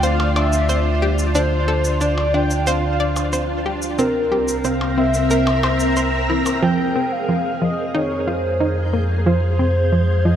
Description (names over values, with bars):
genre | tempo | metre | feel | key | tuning
ambient, sequencer-driven space music | 91 BPM | 4/4 | straight | F minor from 6.6 s | A4 = 440 Hz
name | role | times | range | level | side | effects
pulse-width lead | melody | 0.0-10.4 s | Bb4 to G5 | -23 LUFS | equal | chorus, analog delay
string machine, full ensemble | sustained chords | 0.0-10.4 s | C4 to Bb5 | -23 LUFS | equal | ensemble chorus
analog pluck | riff | 0.0-10.4 s | F3 to D5 | -22 LUFS | equal | chorus, analog delay
analog drone | bass | 0.0-10.4 s | C2 to F2 | -20 LUFS | equal | chorus, tube saturation
shaker and percussion blips | percussion | 0.0-6.6 s | none | -28 LUFS | left 1 dB | analog delay
bubbling stepped-filter texture | texture | 0.0-10.4 s | C5 to G6 | -36 LUFS | right 4 dB | none
room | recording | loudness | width
moderate plate reverb, RT60 2.7 s | none | -16 LUFS | side -9 dB against mid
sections
0.0-6.6 A section; 6.6-10.4 B section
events
none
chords
0.0 Dm; 4.0 C7; 6.6 Fmadd9